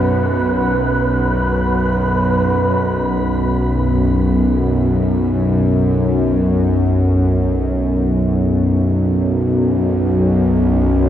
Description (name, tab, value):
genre	dark ambient drone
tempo	free time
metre	none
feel	none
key	unclear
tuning	A4 = 440 Hz
part	deep dark ambient pad	sustained chords	0.0-2.7 s	B3 to F#5	-34 LUFS	right 1 dB	chorus, built-in reverb, shimmer reverb
part	bowed-like drone	drone	0.0-11.1 s	B1 to F#2	-14 LUFS	equal	built-in reverb
part	wind-like tuned noise texture	texture	0.0-2.6 s	B4	-22 LUFS	right 2 dB	built-in reverb, shimmer reverb
room	wet cathedral reverb, RT60 6.9 s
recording	none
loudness	-14 LUFS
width	side -11 dB against mid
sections	0.0-2.6 A section; 2.6-11.1 B section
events	none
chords	0.0 B5